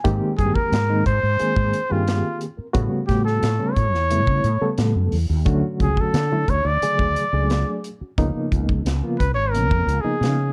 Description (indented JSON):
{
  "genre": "electric jazz fusion",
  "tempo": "88 BPM",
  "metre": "4/4",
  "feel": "straight",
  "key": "unclear",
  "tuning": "A4 = 439 Hz",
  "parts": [
    { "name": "reed electric piano", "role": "accompaniment", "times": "0.0-10.5 s", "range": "C#3 to Bb4", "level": "-27 LUFS", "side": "equal", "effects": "tremolo" },
    { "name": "fretless electric bass", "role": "bass", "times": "0.0-10.5 s", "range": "Ab1 to D3", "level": "-24 LUFS", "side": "equal", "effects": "lush chorus" },
    { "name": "modern studio drum kit", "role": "drums", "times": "0.1-10.4 s", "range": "hi-hat, kick drum, snare drum", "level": "-26 LUFS", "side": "equal", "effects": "none" },
    { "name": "breathy trumpet", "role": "melody", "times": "0.4-10.5 s", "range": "F4 to D5", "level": "-25 LUFS", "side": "equal", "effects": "none" }
  ],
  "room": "light reverb, small room ambience",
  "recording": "dark, warm production",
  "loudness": "-21 LUFS",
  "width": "mono",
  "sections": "0.0-10.5 A section",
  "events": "none",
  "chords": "0.1 Abmaj9; 2.8 A13; 5.5 Dmaj7; 8.2 Db13"
}